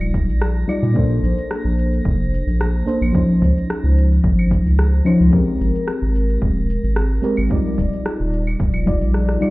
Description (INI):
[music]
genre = sunset chillout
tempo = 110 BPM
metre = 4/4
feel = straight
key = unclear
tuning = A4 = 442 Hz
[part]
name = mellow FM electric piano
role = accompaniment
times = 0.0-9.5 s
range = F3 to D5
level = -20 LUFS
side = left 1 dB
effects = chorus, auto-pan, digital delay
[part]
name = round analog bass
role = bass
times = 0.0-9.4 s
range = Eb1 to Bb2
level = -17 LUFS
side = equal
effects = none
[part]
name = electronic claves, shaker and rim click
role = drums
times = 0.0-9.5 s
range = none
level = -28 LUFS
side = equal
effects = overdrive, small room ambience
[part]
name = drifting glass-harmonics texture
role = texture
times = 0.0-9.5 s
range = Bb6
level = -43 LUFS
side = right 4 dB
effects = chorus, built-in reverb
[part]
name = electronic kick drum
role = drums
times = 0.1-9.0 s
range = none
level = -21 LUFS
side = equal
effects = overdrive, small room ambience
[sound]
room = light reverb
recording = heard muffled through a wall, club reverb, EQ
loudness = -15 LUFS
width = side -20 dB against mid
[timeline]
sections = 0.0-9.5 A section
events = kick drops out 9.1-9.5; drum fill 9.1-9.5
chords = 0.0 Ebmaj9; 1.0 Bbmaj9; 3.1 Dbmaj9; 5.3 Abmaj9; 7.5 Ebmaj9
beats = 0.42 | 0.96 1.51 2.06 2.60 | 3.15 3.69 4.24 4.78 | 5.33 5.87 6.42 6.96 | 7.51 8.06 8.60 9.15